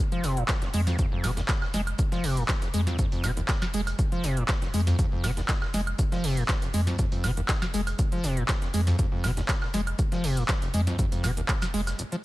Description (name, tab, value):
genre	acid house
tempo	120 BPM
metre	4/4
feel	straight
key	F minor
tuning	A4 = 439 Hz
part	overdriven acid bass	riff	0.0-12.2 s	F1 to Ab3	-29 LUFS	equal	analog chorus, sidechain pumping, tape echo
part	booming analog drum machine	drums	0.1-12.2 s	handclaps, hi-hat, snare drum, woodblock	-32 LUFS	right 1 dB	none
part	warm sub bass	bass	0.2-11.9 s	F1 to F2	-28 LUFS	equal	sidechain pumping
part	breakbeat sampler-style drum kit	drums	0.2-12.1 s	hi-hat, shaker, snare drum	-40 LUFS	equal	high-pass filter on perc, high-pass filter on snare, high-pass filter on hats
part	electronic kick drum	drums	0.5-11.6 s	none	-27 LUFS	equal	overdrive
room	little or no reverb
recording	none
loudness	-24 LUFS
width	side -17 dB against mid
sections	0.0-12.2 A section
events	break 12.0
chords	none